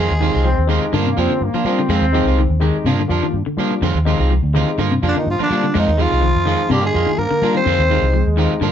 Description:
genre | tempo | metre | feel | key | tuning
afrobeat | 125 BPM | 4/4 | straight | F dorian | A4 = 440 Hz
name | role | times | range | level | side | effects
growling tenor saxophone | melody | 0.0-0.6, 5.1-8.2 s | D4 to C5 | -19 LUFS | equal | none
growling trombone | second line | 0.0-0.6, 5.1-8.2 s | D3 to C4 | -26 LUFS | right 1 dB | none
electric guitar at the edge of break-up | stabs | 0.0-8.7 s | Eb3 to F4 | -22 LUFS | right 5 dB | none
fingered electric bass | bass | 0.0-8.7 s | C2 to G3 | -18 LUFS | equal | none
barky tine electric piano | accompaniment | 0.2-8.6 s | Ab3 to Ab4 | -25 LUFS | left 4 dB | overdrive
clean electric guitar | arpeggios | 0.2-8.7 s | C3 to Ab3 | -23 LUFS | left 4 dB | none
warm trombone section | second line | 0.4-2.6, 8.1-8.7 s | Ab3 to C4 | -21 LUFS | equal | none
room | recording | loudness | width
moderate small room reverb, RT60 0.5 s | band playing live in one room, nothing above 7.7 kHz | -14 LUFS | side -9 dB against mid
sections
0.0-8.7 A section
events
none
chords
0.0 Fm7; 0.9 Gm7; 1.9 Fm7; 2.9 Gm7; 3.8 Fm7; 4.8 Gm7; 5.7 Fm7; 6.7 Gm7; 7.7 Fm7

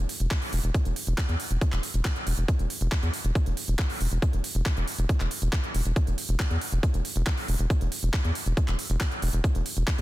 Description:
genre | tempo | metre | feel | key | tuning
psychedelic trance | 138 BPM | 4/4 | straight | unclear | A4 = 441 Hz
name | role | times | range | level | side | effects
round analog bass | bass | 0.0-10.0 s | E1 to E2 | -26 LUFS | equal | none
garage drum kit | drums | 0.1-10.0 s | handclaps, hi-hat | -33 LUFS | right 1 dB | none
electronic kick drum | drums | 0.3-10.0 s | none | -27 LUFS | equal | none
room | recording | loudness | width
little or no reverb | dense, heavily limited modern master | -24 LUFS | side -17 dB against mid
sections
0.0-10.0 A section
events
none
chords
none

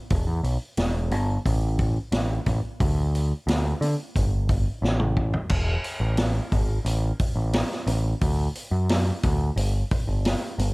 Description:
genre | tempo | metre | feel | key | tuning
psychedelic rock | 89 BPM | 4/4 | straight | E minor | A4 = 440 Hz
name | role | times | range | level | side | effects
growling picked electric bass | bass | 0.1-10.7 s | E1 to D3 | -23 LUFS | equal | overdrive
vintage drum kit | drums | 0.1-10.7 s | crash cymbal, hi-hat, kick drum, snare drum, toms | -26 LUFS | equal | analog delay
room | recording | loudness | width
little or no reverb | echo-heavy mix | -22 LUFS | side -26 dB against mid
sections
0.0-5.5 A section; 5.5-10.7 B section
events
drum fill 4.8-5.5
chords
none

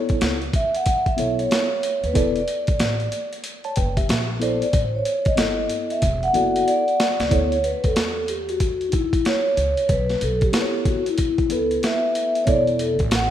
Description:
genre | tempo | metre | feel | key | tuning
hip hop, jazz-hop | 93 BPM | 4/4 | swing 64% on 16ths | E dorian | A4 = 440 Hz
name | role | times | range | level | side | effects
mellow tine electric piano | accompaniment | 0.0-13.0 s | B3 to A5 | -27 LUFS | equal | medium stereo tremolo
boom bap sampler-style drum kit | drums | 0.1-13.3 s | hi-hat, kick drum, snare drum | -23 LUFS | equal | none
upright bass | bass | 0.2-13.3 s | E1 to E2 | -27 LUFS | equal | none
vibraphone with soft mallets | melody | 0.6-13.3 s | D#4 to F#5 | -22 LUFS | equal | none
room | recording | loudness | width
light reverb | rough home demo mix, vinyl crackle | -19 LUFS | side -11 dB against mid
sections
0.0-7.3 A section; 7.3-13.3 B section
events
vibraphone solo 0.0-7.3; drum fill 6.0-7.3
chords
0.0 B9sus4; 2.2 E9sus4; 4.1 A#; 4.7 A5; 6.0 Esus2; 7.3 Dsus2; 9.9 B9sus4; 12.5 E9sus4

